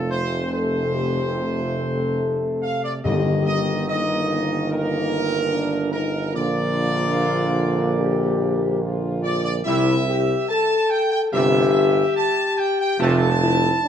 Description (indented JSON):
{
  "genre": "classical, ceremonial fanfare",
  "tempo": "72 BPM",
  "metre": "4/4",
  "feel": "straight",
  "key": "unclear",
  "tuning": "A4 = 441 Hz",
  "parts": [
    { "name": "warm trumpet section", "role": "melody", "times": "0.0-13.9 s", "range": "A4 to A5", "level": "-24 LUFS", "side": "right 2 dB", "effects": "none" },
    { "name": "clear trombone section", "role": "sustained chords", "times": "0.0-13.3 s", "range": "C3 to Bb3", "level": "-27 LUFS", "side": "right 2 dB", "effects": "none" },
    { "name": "mellow French horn section", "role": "sustained chords", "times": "0.0-13.9 s", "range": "D4 to A4", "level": "-24 LUFS", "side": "left 4 dB", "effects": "none" },
    { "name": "warm tuba", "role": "bass", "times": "0.0-13.7 s", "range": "F1 to C2", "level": "-24 LUFS", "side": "right 3 dB", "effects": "none" },
    { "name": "timpani", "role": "percussion", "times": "3.1-4.3 s", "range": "G2", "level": "-25 LUFS", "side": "left 2 dB", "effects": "none" }
  ],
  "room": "moderate large studio reverb, RT60 1.4 s",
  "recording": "dark, warm production",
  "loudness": "-19 LUFS",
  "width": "side -8 dB against mid",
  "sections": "0.0-13.9 A section",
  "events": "none",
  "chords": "0.0 F; 3.0 Eb/G; 6.3 Bb; 9.6 C; 13.0 F",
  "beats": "0.53 1.37 2.21 | 3.04 3.88 4.70 5.52 | 6.34 7.17 8.00 8.82 | 9.64 10.48 11.32 12.16 | 13.00 13.84"
}